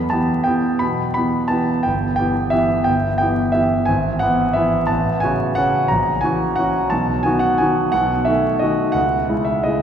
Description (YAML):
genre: classical, piano waltz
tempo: 177 BPM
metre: 3/4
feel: uneven beats, rubato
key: E minor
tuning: A4 = 440 Hz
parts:
  - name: bright concert grand piano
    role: solo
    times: 0.0-9.8 s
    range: G1 to B5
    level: -16 LUFS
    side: equal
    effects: none
room: wet cathedral reverb, RT60 5.8 s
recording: recorded in a church or concert hall, vinyl crackle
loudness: -16 LUFS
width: side -8 dB against mid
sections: 0.0-9.8 A section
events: none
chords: 0.0 Em; 1.9 Em/G; 3.9 E/G#; 4.9 F#m/A; 5.9 F#7/A#; 6.9 B; 7.9 B7; 9.0 C#m